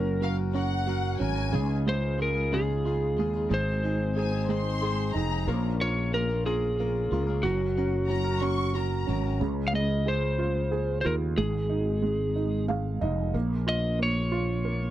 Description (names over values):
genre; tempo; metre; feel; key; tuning
six-eight pop ballad; 61 BPM (dotted quarters); 6/8; straight; Db major; A4 = 442 Hz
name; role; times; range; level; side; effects
electric slide guitar; melody; 0.0-14.9 s; Gb4 to F5; -30 LUFS; left 1 dB; none
felt-muted upright piano; accompaniment; 0.0-14.9 s; Db3 to F5; -31 LUFS; right 5 dB; none
direct-recorded clean electric guitar; arpeggios; 0.0-9.4 s; Ab2 to Bb4; -37 LUFS; left 9 dB; none
fretless electric bass; bass; 0.0-14.9 s; F1 to Eb2; -28 LUFS; equal; ensemble chorus
warm studio violin section; second line; 0.2-9.4 s; F5 to Db6; -34 LUFS; left 2 dB; none
room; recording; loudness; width
little or no reverb; dry, close 1970s-style studio recording; -25 LUFS; side -13 dB against mid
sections
0.0-9.4 A section; 9.4-14.9 A section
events
felt piano fill 12.4-13.3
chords
0.0 Gb; 1.5 Dbadd9; 3.5 Ab; 5.5 Bbm; 7.4 Gb; 9.4 Dbadd9; 11.4 Ab5; 13.3 Bbm